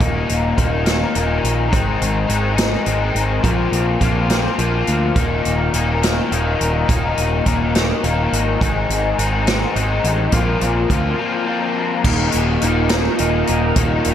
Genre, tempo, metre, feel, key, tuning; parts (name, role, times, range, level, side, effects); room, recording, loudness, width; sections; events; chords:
indie rock; 70 BPM (dotted quarters); 6/8; straight; A4 = 440 Hz
crunchy overdriven guitar; riff; 0.0-14.1 s; Eb2 to F4; -19 LUFS; left 4 dB; ensemble chorus
growling picked electric bass; bass; 0.0-14.1 s; Eb1 to D2; -20 LUFS; right 1 dB; overdrive
vintage drum kit; drums; 0.0-14.1 s; crash cymbal, hi-hat, kick drum, snare drum; -21 LUFS; right 1 dB
electric guitar through a small old amp; riff; 12.1-14.1 s; Eb2 to Eb4; -23 LUFS; right 7 dB; wide subtle chorus, tape echo
light reverb, studio reverb; -15 LUFS; side -10 dB against mid
0.0-12.1 A section; 12.1-14.1 B section
break 11.2-12.1
0.0 Eb5; 1.7 Ab; 3.4 Bbsus2; 5.2 Eb5; 8.6 Ab; 10.3 Bbsus2; 12.1 Eb5